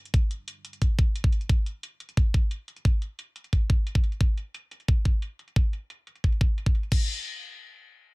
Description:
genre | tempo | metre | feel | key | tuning
dark technical drum and bass | 177 BPM | 4/4 | straight | unclear | A4 = 440 Hz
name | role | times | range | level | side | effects
dark analog pad | sustained chords | 0.0-1.5 s | G3 to F4 | -63 LUFS | right 1 dB | chorus, phaser, sidechain pumping
drum and bass drum kit | drums | 0.1-7.0 s | crash cymbal, hi-hat | -39 LUFS | left 3 dB | low-pass filter on hats, low-pass filter on snare, low-pass filter on cymbals, low-pass filter on room
electronic kick drum | drums | 0.1-7.0 s | none | -22 LUFS | equal | none
room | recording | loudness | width
little or no reverb | dense, heavily limited modern master | -24 LUFS | side -27 dB against mid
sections
0.0-6.9 A section; 6.9-8.1 B section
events
none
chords
0.0 G5; 6.9 N.C.

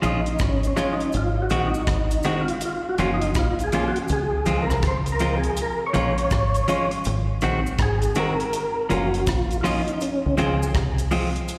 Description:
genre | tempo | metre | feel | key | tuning
roots reggae | 81 BPM | 4/4 | swing 64% on 16ths | Db major | A4 = 440 Hz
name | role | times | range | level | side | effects
clean electric guitar | accompaniment | 0.0-11.3 s | Eb3 to Gb4 | -28 LUFS | equal | tape echo, slapback echo
deep dub fingered electric bass | bass | 0.0-11.4 s | Gb1 to Db2 | -26 LUFS | equal | none
deep reggae drum kit | drums | 0.0-11.6 s | hi-hat, kick drum, rim click | -31 LUFS | equal | none
cabasa | percussion | 0.0-11.6 s | none | -46 LUFS | equal | none
percussive tonewheel organ | melody | 0.1-10.7 s | Db4 to Db5 | -28 LUFS | equal | chorus vibrato, fast rotary speaker, tape echo, slapback echo
room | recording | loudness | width
light reverb, studio reverb | live gig heard through the venue's PA, recital hall reverb | -23 LUFS | mono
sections
0.0-11.6 A section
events
tonewheel organ solo 0.0-11.6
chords
0.0 Bbm7; 1.1 Ab7; 2.6 Gbmaj7; 4.1 Dbmaj7; 5.6 Bbm7; 7.0 Ab7; 8.5 Gbmaj7; 10.0 Dbmaj7

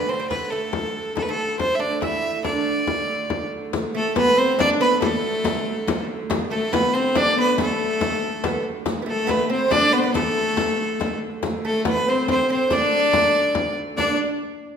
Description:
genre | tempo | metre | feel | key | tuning
medieval dance | 94 BPM (dotted quarters) | 6/8 | straight | unclear | A4 = 440 Hz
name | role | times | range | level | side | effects
clear fiddle | melody | 0.0-14.2 s | A4 to E5 | -22 LUFS | right 1 dB | none
lute | second line | 0.0-14.2 s | A3 to E4 | -28 LUFS | right 4 dB | none
clear hurdy-gurdy | drone | 0.0-14.0 s | D3 to A3 | -32 LUFS | right 3 dB | none
frame drum | percussion | 0.3-14.2 s | none | -28 LUFS | left 5 dB | none
riq | percussion | 3.7-14.2 s | none | -32 LUFS | right 4 dB | none
clear viola da gamba | second line | 4.0-14.2 s | A3 to D4 | -26 LUFS | left 5 dB | none
room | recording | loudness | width
wet recital hall reverb, RT60 1.4 s | minimal, uncompressed stereo recording | -19 LUFS | side -7 dB against mid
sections
0.0-3.7 A section; 3.7-14.0 B section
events
none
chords
none

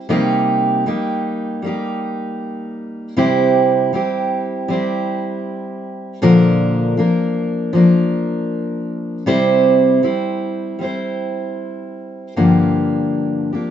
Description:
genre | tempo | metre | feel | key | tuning
pop | 78 BPM | 4/4 | straight | unclear | A4 = 438 Hz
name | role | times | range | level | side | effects
fingerpicked steel-string acoustic guitar | solo | 0.0-13.7 s | G2 to C5 | -16 LUFS | equal | none
room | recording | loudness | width
wet studio ambience, RT60 0.5 s | band playing live in one room, nothing above 8.0 kHz | -15 LUFS | side -10 dB against mid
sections
0.0-12.4 A section; 12.4-13.7 B section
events
none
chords
0.1 Cm7; 3.2 C; 6.2 Bb; 9.3 C; 12.4 Gm7

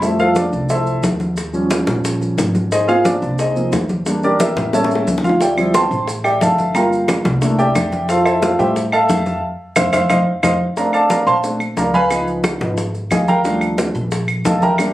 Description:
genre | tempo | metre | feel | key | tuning
Afro-Cuban jazz | 179 BPM | 4/4 | straight | F major | A4 = 442 Hz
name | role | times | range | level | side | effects
warm baby grand piano | accompaniment | 0.0-14.9 s | F3 to C6 | -16 LUFS | equal | none
upright bass | bass | 0.0-14.9 s | G1 to Bb2 | -23 LUFS | equal | none
bongos | percussion | 0.0-14.9 s | none | -24 LUFS | left 2 dB | none
congas | percussion | 0.0-14.9 s | none | -21 LUFS | equal | none
maracas | percussion | 0.0-14.9 s | none | -32 LUFS | right 2 dB | none
claves | percussion | 5.6-14.9 s | none | -23 LUFS | right 2 dB | none
room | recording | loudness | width
moderate club reverb, RT60 0.6 s | recorded on a phone in the room, club reverb, compression | -14 LUFS | side -15 dB against mid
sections
0.0-10.8 A section; 10.8-14.9 A section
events
grand piano solo 0.0-14.9; drum fill 4.7-5.4, 9.4-10.8; band accent 9.4-10.8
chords
0.0 Fmaj9; 1.4 Eb9; 2.7 Ab6; 4.1 Em7b5; 4.7 A7b9; 5.4 Dm11; 6.8 Gm7; 7.4 C13; 8.1 Fmaj9; 10.1 F5; 10.8 Bbmaj9; 12.1 Db9; 13.4 Ebmaj9#11

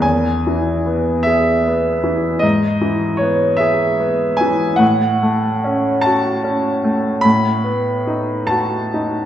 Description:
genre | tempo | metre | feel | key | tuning
classical, romantic nocturne for solo piano | 44-52 BPM (dotted quarters) | 12/8 | rubato | E major | A4 = 439 Hz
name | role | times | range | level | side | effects
clear baby grand piano | solo | 0.0-9.3 s | E2 to B5 | -14 LUFS | equal | none
room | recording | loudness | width
wet recital hall reverb, RT60 1.3 s | none | -14 LUFS | side -10 dB against mid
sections
0.0-9.3 A section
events
none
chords
0.0 E; 2.4 E/G#; 4.8 F#m/A; 7.3 B7/A

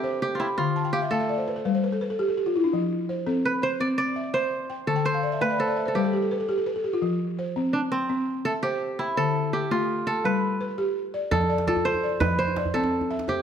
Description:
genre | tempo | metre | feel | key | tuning
west african traditional, West African string and xylophone music | 112 BPM (dotted quarters) | 12/8 | straight | F lydian | A4 = 442 Hz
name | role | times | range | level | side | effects
kora | melody | 0.0-13.4 s | C4 to D5 | -26 LUFS | right 2 dB | none
balafon | arpeggios | 0.0-13.4 s | D3 to A5 | -25 LUFS | left 2 dB | none
djembe | percussion | 11.3-13.4 s | none | -30 LUFS | right 2 dB | none
room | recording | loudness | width
moderate recital hall reverb, RT60 1.7 s | none | -23 LUFS | side -8 dB against mid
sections
0.0-11.3 A section; 11.3-13.4 B section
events
balafon fill 0.8-2.7, 5.0-7.0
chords
0.0 C; 0.6 Dm; 1.7 N.C.; 2.7 F; 3.8 C; 4.9 D5; 5.9 N.C.; 7.0 F5; 8.1 C; 9.2 Dm; 10.2 G; 11.3 F; 12.4 C

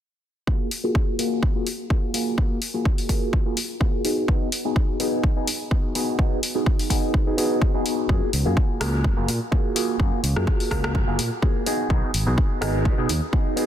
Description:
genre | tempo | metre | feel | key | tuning
filtered disco house | 126 BPM | 4/4 | swing 54% on 16ths | F# major | A4 = 440 Hz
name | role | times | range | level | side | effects
overdriven reed electric piano | accompaniment | 0.5-13.7 s | A#3 to G#4 | -25 LUFS | equal | phaser, sidechain pumping, low-pass filter
electronic kick drum | drums | 0.5-13.4 s | none | -21 LUFS | equal | none
punchy analog drum machine | drums | 0.7-13.7 s | hi-hat, rim click | -28 LUFS | left 1 dB | overdrive, sidechain pumping on hats
fingered electric bass | bass | 8.1-13.2 s | F#1 to B2 | -24 LUFS | equal | sidechain pumping, low-pass filter
room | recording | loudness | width
light reverb, digital ambience | dense, heavily limited modern master | -20 LUFS | side -10 dB against mid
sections
0.5-13.7 A section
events
filter sweep 0.5-13.7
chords
0.5 F#maj9; 4.0 B6; 8.1 F#maj9; 11.7 B6

